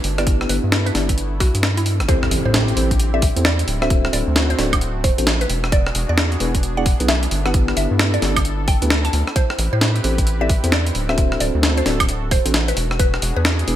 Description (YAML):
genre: UK garage, two-step garage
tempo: 132 BPM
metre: 4/4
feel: swing 63% on 16ths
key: A dorian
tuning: A4 = 440 Hz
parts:
  - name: mallet-like synth pluck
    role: melody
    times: 0.0-13.5 s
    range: E4 to A5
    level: -26 LUFS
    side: equal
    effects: chorus, phaser, ping-pong delay
  - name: warm analog pad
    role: sustained chords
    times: 0.0-13.8 s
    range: G#3 to B4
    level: -31 LUFS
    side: right 1 dB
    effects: chorus, sidechain pumping
  - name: rubbery square bass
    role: bass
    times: 0.0-13.8 s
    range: D1 to A2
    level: -20 LUFS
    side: equal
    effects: none
  - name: breakbeat sampler-style drum kit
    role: drums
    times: 0.0-13.8 s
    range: hi-hat, rim click, snare drum, woodblock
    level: -21 LUFS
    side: equal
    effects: studio reverb, gated reverb
  - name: mellow tine electric piano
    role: stabs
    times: 0.2-13.8 s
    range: B3 to D5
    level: -25 LUFS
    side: equal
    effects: medium stereo tremolo, ping-pong delay
  - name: electronic kick drum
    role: drums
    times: 0.3-13.1 s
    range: none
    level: -18 LUFS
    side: equal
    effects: studio reverb
  - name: impact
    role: sound effects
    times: 2.1-3.9 s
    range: none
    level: -27 LUFS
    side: left 1 dB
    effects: none
room: light reverb, digital ambience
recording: bright 1980s-style digital production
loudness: -16 LUFS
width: side -12 dB against mid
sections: 0.0-2.1 A section; 2.1-13.8 B section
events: drop 2.1-13.8; impact 2.1-3.9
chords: 0.3 G6; 2.1 Am7; 3.9 D7; 5.5 E7; 7.5 G6; 9.4 Am7; 11.2 D7; 12.8 E7